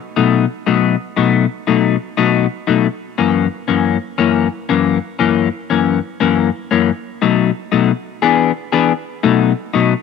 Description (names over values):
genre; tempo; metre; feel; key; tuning
blues; 119 BPM; 4/4; swing 63% on 8ths; B mixolydian; A4 = 440 Hz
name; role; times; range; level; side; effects
semi-hollow electric guitar; solo; 0.2-9.9 s; F#2 to G#4; -14 LUFS; left 8 dB; wide subtle chorus
room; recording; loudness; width
little or no reverb; none; -13 LUFS; side -5 dB against mid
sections
0.0-10.0 A section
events
none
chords
0.0 B7; 2.9 F#7; 6.9 B7; 7.9 E7; 8.9 B7